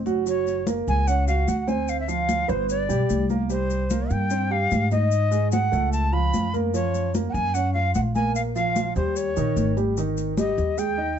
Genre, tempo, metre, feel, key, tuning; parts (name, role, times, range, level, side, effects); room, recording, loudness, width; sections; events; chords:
Afro-Cuban jazz; 148 BPM; 4/4; straight; A4 = 441 Hz
upright bass; bass; 0.0-11.1 s; Gb1 to Ab2; -25 LUFS; equal
warm grand piano; accompaniment; 0.1-11.2 s; Eb3 to G5; -27 LUFS; right 4 dB
congas; percussion; 0.1-11.2 s; -28 LUFS; left 2 dB
maracas; percussion; 0.1-11.0 s; -41 LUFS; left 8 dB
breathy bright jazz flute; melody; 0.3-11.2 s; C5 to Cb6; -26 LUFS; equal
light reverb; nothing above 7.9 kHz; -21 LUFS; side -8 dB against mid
0.3-11.2 A section
0.3 Gb; 1.9 Dm13; 2.7 G; 3.5 Cm7; 5.1 Ab5; 5.9 Dbaug7; 6.7 Gbmaj7; 8.4 Bb5; 9.2 Eb7; 10.0 Ab5